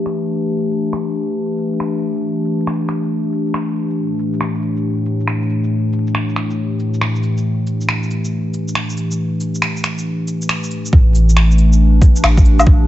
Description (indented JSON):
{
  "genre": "future garage",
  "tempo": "138 BPM",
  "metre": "4/4",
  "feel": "swing 66% on 16ths",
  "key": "unclear",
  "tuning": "A4 = 441 Hz",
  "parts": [
    { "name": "warbly tape-like pad", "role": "sustained chords", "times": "0.0-12.9 s", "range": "A2 to G4", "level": "-18 LUFS", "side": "left 1 dB", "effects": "chorus, built-in reverb, sidechain pumping" },
    { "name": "electronic finger snaps, shaker, cabasa and woodblock", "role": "drums", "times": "0.1-12.7 s", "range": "none", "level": "-20 LUFS", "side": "equal", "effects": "overdrive" },
    { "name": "warm sub bass", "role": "bass", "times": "10.9-12.9 s", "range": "A1", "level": "-12 LUFS", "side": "equal", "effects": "sidechain pumping" },
    { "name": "electronic kick drum", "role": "drums", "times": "10.9-12.8 s", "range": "none", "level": "-9 LUFS", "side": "equal", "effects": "overdrive" }
  ],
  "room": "moderate recital hall reverb, RT60 1.7 s, digital ambience",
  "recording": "vinyl crackle, low-pass filter, nothing above 7.9 kHz",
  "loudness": "-14 LUFS",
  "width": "side -14 dB against mid",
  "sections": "0.0-10.9 A section; 10.9-12.9 B section",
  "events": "filter sweep 0.0-10.9",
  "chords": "0.0 A5"
}